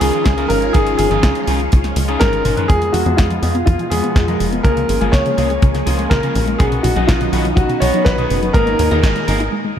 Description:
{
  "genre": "italo disco",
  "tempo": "123 BPM",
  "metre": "4/4",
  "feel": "straight",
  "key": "unclear",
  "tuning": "A4 = 439 Hz",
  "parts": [
    { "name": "warm concert grand piano", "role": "melody", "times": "0.0-9.5 s", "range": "F4 to Db5", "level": "-19 LUFS", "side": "equal", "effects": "ping-pong delay, shimmer reverb" },
    { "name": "phased string machine", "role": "sustained chords", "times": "0.0-9.5 s", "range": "Bb2 to Ab4", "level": "-22 LUFS", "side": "equal", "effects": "ensemble chorus, phaser, shimmer reverb" },
    { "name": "clean electric guitar", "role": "stabs", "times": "0.0-9.4 s", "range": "Ab3 to Cb5", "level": "-23 LUFS", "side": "left 1 dB", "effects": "wide subtle chorus, low-pass filter, shimmer reverb" },
    { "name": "tight sequencer bass", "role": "bass", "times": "0.0-9.5 s", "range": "F1 to F2", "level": "-20 LUFS", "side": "equal", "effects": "tube saturation" },
    { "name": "house drum kit", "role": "drums", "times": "0.0-9.5 s", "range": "hi-hat, snare drum, toms", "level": "-25 LUFS", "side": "equal", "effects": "high-pass filter on hats, studio reverb, high-pass filter on snare, high-pass filter on toms" },
    { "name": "kick drum", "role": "drums", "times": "0.3-9.1 s", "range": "none", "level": "-14 LUFS", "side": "equal", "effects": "studio reverb" },
    { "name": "soft round pluck", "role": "arpeggios", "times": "2.7-9.8 s", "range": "Db2 to Eb4", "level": "-24 LUFS", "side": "equal", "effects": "chorus, cassette tape, ping-pong delay, shimmer reverb" }
  ],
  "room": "moderate plate reverb, RT60 2.9 s",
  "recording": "none",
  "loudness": "-13 LUFS",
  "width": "side -9 dB against mid",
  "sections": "0.0-2.7 A section; 2.7-9.8 B section",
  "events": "drum fill 2.2-2.7; filter sweep on synth arpeggio sound 2.7-9.8; filter sweep on clean electric guitar 2.7-9.8; filter sweep on string machine 2.7-9.8; break 9.5",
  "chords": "0.0 Dbadd9; 2.7 Fdim; 4.6 Db6; 6.6 Badd9; 8.5 Absus2"
}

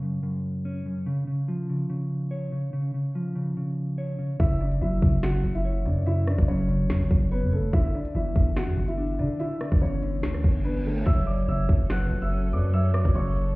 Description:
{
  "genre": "hip hop, drill",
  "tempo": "144 BPM",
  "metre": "4/4",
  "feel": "half-time",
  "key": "F# phrygian",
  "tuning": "A4 = 440 Hz",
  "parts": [
    { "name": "mellow electric guitar", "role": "accompaniment", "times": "0.0-13.6 s", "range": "F#2 to C#5", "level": "-28 LUFS", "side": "equal", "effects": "none" },
    { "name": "dark grand piano", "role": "melody", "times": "4.4-13.6 s", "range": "A3 to F#6", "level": "-32 LUFS", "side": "equal", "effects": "tape echo" },
    { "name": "distorted 808-style bass", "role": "bass", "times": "4.4-13.6 s", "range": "F#1 to D3", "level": "-26 LUFS", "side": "equal", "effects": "distortion" },
    { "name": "drill drum kit", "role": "drums", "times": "4.4-13.5 s", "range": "crash cymbal, finger snaps, hi-hat, kick drum, rim click, snare drum", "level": "-22 LUFS", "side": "equal", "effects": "none" },
    { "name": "reverse cymbal", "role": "sound effects", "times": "10.4-11.1 s", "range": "none", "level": "-43 LUFS", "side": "right 2 dB", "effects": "none" },
    { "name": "large pan pipes", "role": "second line", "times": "11.1-13.5 s", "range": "A4 to C#5", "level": "-38 LUFS", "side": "right 5 dB", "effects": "tape echo" },
    { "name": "dark studio string section", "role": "sustained chords", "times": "11.1-13.6 s", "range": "F#3 to C#5", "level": "-36 LUFS", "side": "right 1 dB", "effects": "none" }
  ],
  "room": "little or no reverb",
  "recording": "heard muffled through a wall, stone room reverb, EQ",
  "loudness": "-23 LUFS",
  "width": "side -22 dB against mid",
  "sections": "0.0-11.1 A section; 11.1-13.6 B section",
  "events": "break 0.0-4.4; reverse cymbal 10.4-11.1",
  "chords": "0.0 F#5; 1.1 C#; 4.4 F#5; 7.7 G5; 11.1 F#m"
}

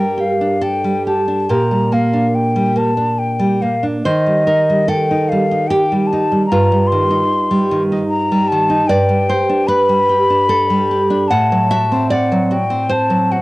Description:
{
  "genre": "romantic duo for flute and classical guitar",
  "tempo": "67-76 BPM",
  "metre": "3/4",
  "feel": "rubato",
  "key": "G major from 8.9 s",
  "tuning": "A4 = 440 Hz",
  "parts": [
    { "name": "mellow hollow silver concert flute", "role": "melody", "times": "0.0-13.4 s", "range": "Eb5 to C6", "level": "-17 LUFS", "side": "left 2 dB", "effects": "cassette tape" },
    { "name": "nylon-string guitar", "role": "accompaniment", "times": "0.0-13.4 s", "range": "G2 to F#5", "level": "-15 LUFS", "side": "right 1 dB", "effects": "cassette tape" }
  ],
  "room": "light reverb, studio ambience",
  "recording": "home recording on cassette",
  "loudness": "-13 LUFS",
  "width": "side -19 dB against mid",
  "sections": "0.0-13.4 A section",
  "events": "none",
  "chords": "0.0 Gm; 1.5 Gm/Bb; 4.0 Eb; 6.5 Eb/G; 8.9 G; 11.3 D7/A"
}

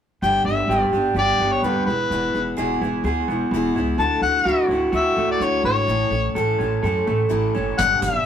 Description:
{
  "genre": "folk rock and heartland rock",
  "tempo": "127 BPM",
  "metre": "4/4",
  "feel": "straight",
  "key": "A major",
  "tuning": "A4 = 440 Hz",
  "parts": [
    { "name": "mellow harmonica", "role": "melody", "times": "0.2-8.3 s", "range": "B4 to A5", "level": "-20 LUFS", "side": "left 3 dB", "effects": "none" },
    { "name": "picked steel-string acoustic guitar", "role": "accompaniment", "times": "0.2-8.2 s", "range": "E2 to A4", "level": "-27 LUFS", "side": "left 2 dB", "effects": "none" },
    { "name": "electric guitar through a small old amp", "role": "riff", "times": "0.2-8.3 s", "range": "E2 to A4", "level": "-22 LUFS", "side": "right 2 dB", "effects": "spring reverb" },
    { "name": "upright bass", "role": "bass", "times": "0.2-8.2 s", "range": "E1 to F#2", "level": "-26 LUFS", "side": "right 1 dB", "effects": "none" },
    { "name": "loose indie drum kit", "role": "drums", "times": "7.8-8.1 s", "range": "hi-hat, kick drum", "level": "-27 LUFS", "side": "right 1 dB", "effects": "none" }
  ],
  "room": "wet small room reverb, RT60 0.5 s",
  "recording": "rough rehearsal-room recording",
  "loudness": "-18 LUFS",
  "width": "side -8 dB against mid",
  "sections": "0.2-8.3 A section",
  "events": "none",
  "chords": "0.2 G; 1.9 E; 4.0 Dadd9; 5.9 A"
}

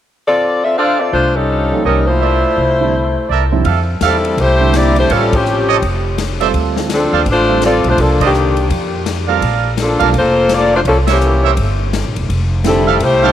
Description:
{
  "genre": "jazz, big band swing",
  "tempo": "166 BPM",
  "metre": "4/4",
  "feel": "swing 63% on 8ths",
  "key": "F major",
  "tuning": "A4 = 440 Hz",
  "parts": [
    { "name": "mellow saxophone section", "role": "melody", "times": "0.3-13.3 s", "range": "Eb3 to F5", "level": "-14 LUFS", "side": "left 2 dB", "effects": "tape echo" },
    { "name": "clear trumpet section", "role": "stabs", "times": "0.8-13.3 s", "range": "D4 to F5", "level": "-19 LUFS", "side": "right 10 dB", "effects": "none" },
    { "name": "upright bass", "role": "bass", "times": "1.1-13.3 s", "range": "E1 to F2", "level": "-17 LUFS", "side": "equal", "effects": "none" },
    { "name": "warm grand piano", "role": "accompaniment", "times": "1.7-10.1, 12.7-13.3 s", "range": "F2 to A4", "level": "-21 LUFS", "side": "right 9 dB", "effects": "none" },
    { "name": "swinging big-band drum kit", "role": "drums", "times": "3.6-13.1 s", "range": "hi-hat, kick drum, ride cymbal, snare drum", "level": "-22 LUFS", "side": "left 4 dB", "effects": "none" }
  ],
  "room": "moderate plate reverb, RT60 2.1 s",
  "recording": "1960s-style stereo",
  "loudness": "-11 LUFS",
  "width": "side -11 dB against mid",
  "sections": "0.8-3.7 A section; 3.7-13.3 B section",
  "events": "band accent 5.3, 8.2, 11.0",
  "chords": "0.0 F6; 1.5 Eb7#11; 2.2 Dm9; 2.9 C69; 5.1 A7alt; 6.5 Dm7; 8.0 Cm9; 8.7 Fadd9; 9.4 Bbmaj7; 10.9 C7b9; 12.3 Fmaj9"
}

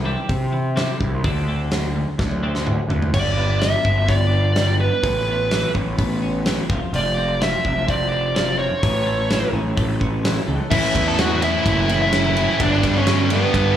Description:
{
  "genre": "quiet-loud alternative rock",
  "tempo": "127 BPM",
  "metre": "4/4",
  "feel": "straight",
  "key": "unclear",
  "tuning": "A4 = 440 Hz",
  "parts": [
    { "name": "twelve-string electric guitar", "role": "arpeggios", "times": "0.0-10.7 s", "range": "G2 to D4", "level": "-27 LUFS", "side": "left 1 dB", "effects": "wide subtle chorus, plate reverb, slapback echo" },
    { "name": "fuzz picked electric bass", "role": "bass", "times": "0.0-13.8 s", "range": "F1 to C3", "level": "-21 LUFS", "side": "equal", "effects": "overdrive" },
    { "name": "big rock drum kit", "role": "drums", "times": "0.3-13.6 s", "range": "crash cymbal, hi-hat, kick drum, ride cymbal, snare drum, toms", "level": "-24 LUFS", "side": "equal", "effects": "none" },
    { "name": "smooth overdriven lead guitar", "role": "melody", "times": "3.1-13.8 s", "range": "B3 to A5", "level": "-21 LUFS", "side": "right 2 dB", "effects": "plate reverb, slapback echo, analog delay" },
    { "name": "thick fuzz guitar", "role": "riff", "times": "10.7-13.8 s", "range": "G2 to E4", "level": "-21 LUFS", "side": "equal", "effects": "distortion, slapback echo" }
  ],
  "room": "light reverb",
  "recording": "live gig heard through the venue's PA, club ambience",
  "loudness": "-17 LUFS",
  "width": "side -10 dB against mid",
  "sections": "0.0-3.1 A section; 3.1-10.7 B section; 10.7-13.8 C section",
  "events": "drum fill 2.2-3.1",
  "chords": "0.0 C; 1.2 D5; 3.1 G; 5.0 Aadd9; 6.7 F5; 8.8 A; 12.6 G"
}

